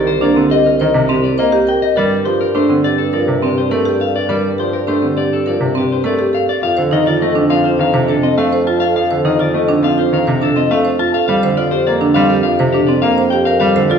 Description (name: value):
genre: classical, minimalist pattern music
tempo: 103 BPM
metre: 4/4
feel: straight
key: F mixolydian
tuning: A4 = 439 Hz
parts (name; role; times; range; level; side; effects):
- clean electric guitar; melody; 0.0-14.0 s; G4 to A5; -18 LUFS; left 6 dB; none
- bright concert grand piano; accompaniment; 0.0-14.0 s; C3 to Bb3; -19 LUFS; right 1 dB; none
- marimba with medium hard mallets; arpeggios; 0.0-14.0 s; C4 to C5; -16 LUFS; right 3 dB; none
- dark bassoon; bass; 0.0-14.0 s; C2 to G2; -20 LUFS; right 1 dB; none
room: wet recital hall reverb, RT60 1.3 s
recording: heard from further back in the room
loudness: -12 LUFS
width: side -7 dB against mid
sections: 0.0-6.6 A section; 6.6-14.0 B section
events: none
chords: 0.0 Cm7; 2.0 Gm11; 6.6 F7; 11.3 Gm7/F